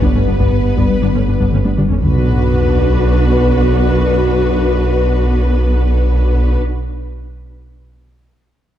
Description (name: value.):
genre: cinematic, hybrid orchestral and electronic film score.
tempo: 119 BPM.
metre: 4/4.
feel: straight.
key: B minor.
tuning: A4 = 440 Hz.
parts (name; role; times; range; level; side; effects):
warm symphonic violin section; melody; 0.0-6.6 s; B4; -28 LUFS; left 6 dB; none.
warm symphonic violin section; second line; 0.0-6.6 s; B4; -26 LUFS; left 2 dB; none.
warm symphonic viola section; accompaniment; 0.0-6.6 s; A3 to F#4; -23 LUFS; right 1 dB; none.
clear trombone section; sustained chords; 0.0-6.6 s; F#2 to B3; -24 LUFS; right 2 dB; none.
dark French horn section; sustained chords; 0.0-6.6 s; D4 to B4; -24 LUFS; left 5 dB; none.
soft round pluck; arpeggios; 0.0-2.0 s; G3 to D4; -22 LUFS; left 3 dB; chorus.
smooth synth bass; riff; 0.0-2.0 s; G2 to G3; -18 LUFS; left 3 dB; none.
mellow tuba; bass; 0.0-6.6 s; G1 to B1; -22 LUFS; right 2 dB; none.
sub bass with octave; bass; 0.0-6.6 s; G1 to B1; -17 LUFS; equal; none.
warm symphonic cello section; bass; 0.0-6.6 s; B3; -26 LUFS; right 1 dB; none.
warm symphonic double bass section; bass; 0.0-6.6 s; G1 to B1; -20 LUFS; right 2 dB; none.
solo taiko drums; drums; 0.0-2.1 s; none; -19 LUFS; equal; none.
sub drop; sound effects; 2.0-4.0 s; none; -19 LUFS; left 1 dB; none.
room: moderate scoring stage reverb, RT60 1.9 s.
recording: dark, warm production.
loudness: -12 LUFS.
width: side -11 dB against mid.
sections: 0.0-2.0 A section; 2.0-6.1 B section.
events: drum fill 1.5-2.0; impact 2.0-4.0.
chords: 0.0 G; 2.0 Bm.